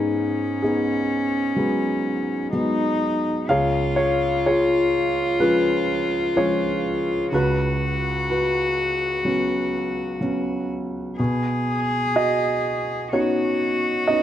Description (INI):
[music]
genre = acoustic folk-pop ballad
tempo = 62 BPM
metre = 4/4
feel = straight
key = B major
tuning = A4 = 439 Hz
[part]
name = dark concert grand piano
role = melody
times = 0.0-14.2 s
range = C#2 to E#5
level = -22 LUFS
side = equal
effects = none
[part]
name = rich cello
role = second line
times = 0.0-14.2 s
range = C#4 to G#4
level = -24 LUFS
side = left 1 dB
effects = none
[sound]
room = light reverb, small room ambience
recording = dry, close 1970s-style studio recording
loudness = -20 LUFS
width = side -11 dB against mid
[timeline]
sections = 0.0-14.2 A section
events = none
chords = 0.0 G#m7; 3.5 C#; 7.3 F#sus4/C#; 11.2 Badd9